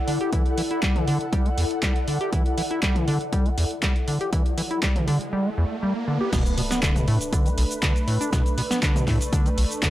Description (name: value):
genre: acid house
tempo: 120 BPM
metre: 4/4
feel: straight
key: B minor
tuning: A4 = 440 Hz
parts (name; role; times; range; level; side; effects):
- ethereal airy pad; texture; 0.0-5.3 s; E4 to F#5; -30 LUFS; left 2 dB; ensemble chorus, built-in reverb, sidechain pumping
- acid bass, square; riff; 0.1-9.9 s; B1 to G4; -25 LUFS; equal; tube saturation, analog chorus, sidechain pumping
- punchy analog drum machine; drums; 0.1-9.9 s; crash cymbal, handclaps, hi-hat, shaker, snare drum, toms; -29 LUFS; equal; none
- electronic kick drum; drums; 0.3-9.9 s; none; -23 LUFS; equal; none
- riser and impact; sound effects; 4.4-8.3 s; none; -32 LUFS; right 1 dB; none
- warm analog pad; sustained chords; 6.3-9.9 s; A3 to B4; -30 LUFS; right 1 dB; chorus, sidechain pumping
room: digital ambience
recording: dry, gritty hardware recording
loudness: -21 LUFS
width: side -14 dB against mid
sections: 0.0-6.3 A section; 6.3-9.9 B section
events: riser 4.4-6.3; drop 6.3-9.9; impact 6.3-8.3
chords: 0.0 Em7; 6.3 Bm7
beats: | 0.33 0.83 1.33 1.83 | 2.33 2.83 3.33 3.83 | 4.33 4.83 5.33 5.83 | 6.33 6.83 7.33 7.83 | 8.33 8.83 9.33 9.83